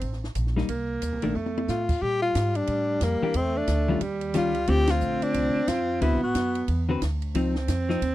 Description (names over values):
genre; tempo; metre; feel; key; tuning
jazz, small-group swing and bop; 180 BPM; 4/4; swing 62% on 8ths; unclear; A4 = 440 Hz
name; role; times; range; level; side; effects
breathy alto saxophone; second line; 0.0-8.1 s; G3 to C4; -30 LUFS; right 4 dB; none
upright bass; bass; 0.0-8.1 s; A1 to Bb2; -28 LUFS; equal; none
compact cocktail drum kit; drums; 0.0-8.1 s; crash cymbal, hi-hat, kick drum, ride cymbal, snare drum, toms; -33 LUFS; equal; none
vintage hollow-body jazz guitar; accompaniment; 0.6-8.0 s; D3 to B4; -27 LUFS; left 3 dB; none
breathy tenor saxophone; melody; 1.7-6.7 s; Bb3 to G4; -26 LUFS; left 2 dB; none
room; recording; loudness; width
light reverb; dry, close 1970s-style studio recording; -23 LUFS; side -15 dB against mid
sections
0.0-2.0 A section; 2.0-8.1 B section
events
drum fill 1.4-1.7; band accent 4.8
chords
0.0 Gmadd11; 0.7 Cm7; 1.4 F; 2.0 Bbmaj7; 3.4 Dm11; 4.0 Eb9; 4.7 Dm7; 6.0 D13; 7.3 Dbmaj9